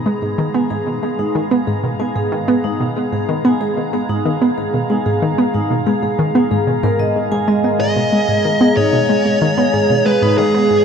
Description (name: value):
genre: ambient, sequencer-driven space music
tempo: 93 BPM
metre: 4/4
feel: straight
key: G# dorian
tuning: A4 = 442 Hz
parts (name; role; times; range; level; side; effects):
- evolving wavetable pad; sustained chords; 0.0-10.8 s; G#3 to A#5; -21 LUFS; right 2 dB; chorus, built-in reverb
- vibraphone with medium hard mallets; arpeggios; 0.1-10.8 s; D#4 to G#5; -22 LUFS; left 2 dB; auto-pan, tape echo
- analog pluck; riff; 0.1-10.8 s; G#2 to B3; -17 LUFS; equal; chorus, vintage 12-bit sampler grit, tape echo
- smooth overdriven lead guitar; melody; 7.8-10.8 s; G#4 to D#5; -16 LUFS; left 1 dB; tape echo
room: wet cathedral reverb, RT60 6.5 s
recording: dreamy mix soaked in reverb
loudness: -14 LUFS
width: side -7 dB against mid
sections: 0.0-10.8 A section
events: none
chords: 0.0 G#madd9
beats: | 0.06 0.70 1.35 2.00 | 2.64 3.29 3.93 4.58 | 5.22 5.87 6.51 7.16 | 7.80 8.45 9.09 9.74 | 10.38